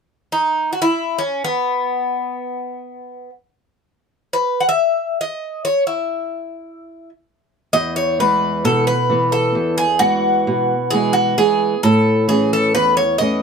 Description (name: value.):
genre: greek folk, Greek bouzouki band.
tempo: free time.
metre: none.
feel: none.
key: E major.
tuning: A4 = 441 Hz.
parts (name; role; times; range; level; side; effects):
Greek bouzouki; melody; 0.3-13.4 s; B3 to F#5; -17 LUFS; equal; none.
flamenco guitar; accompaniment; 7.7-13.4 s; E2 to C#4; -18 LUFS; right 1 dB; none.
room: light reverb.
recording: close, detailed microphones.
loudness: -15 LUFS.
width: side -5 dB against mid.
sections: 0.0-7.7 A section; 7.7-13.4 B section.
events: none.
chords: 0.0 N.C.; 7.7 E; 11.8 A.